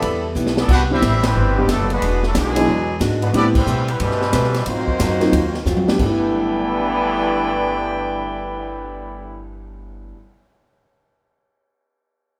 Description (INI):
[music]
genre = jazz, big band swing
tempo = 181 BPM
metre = 4/4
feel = swing 64% on 8ths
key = G major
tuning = A4 = 440 Hz
[part]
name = clear trumpet section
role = melody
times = 0.0-9.4 s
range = F#3 to B5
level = -26 LUFS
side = equal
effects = none
[part]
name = bright trombone section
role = second line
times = 0.0-9.4 s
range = G2 to F#4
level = -27 LUFS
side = equal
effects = none
[part]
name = picked acoustic archtop guitar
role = accompaniment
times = 0.0-10.2 s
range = Ab2 to B4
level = -29 LUFS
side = equal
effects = none
[part]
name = upright bass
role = bass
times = 0.0-10.1 s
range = E1 to B2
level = -25 LUFS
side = equal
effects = none
[part]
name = swinging big-band drum kit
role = drums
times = 0.0-8.6 s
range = crash cymbal, cymbal swell, hi-hat, kick drum, ride cymbal, snare drum, toms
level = -26 LUFS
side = equal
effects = none
[part]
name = warm concert grand piano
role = accompaniment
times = 0.9-10.2 s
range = G2 to G4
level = -24 LUFS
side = equal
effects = none
[sound]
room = wet small room reverb, RT60 0.5 s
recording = heard from further back in the room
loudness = -19 LUFS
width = mono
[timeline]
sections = 0.7-6.0 A section; 6.0-8.7 B section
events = drum fill 0.4-0.7, 5.7-6.0; band accent 1.2, 3.5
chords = 0.0 G69; 0.7 Cmaj7; 2.0 E9; 3.3 Am9; 4.7 Ab13; 6.0 G69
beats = 0.02 0.35 | 0.69 1.02 1.35 1.68 | 2.01 2.35 2.68 3.01 | 3.34 3.67 4.00 4.33 | 4.67 5.00 5.33 5.66 | 6.00 6.33 6.66 6.99 | 7.33 7.66 7.99 8.32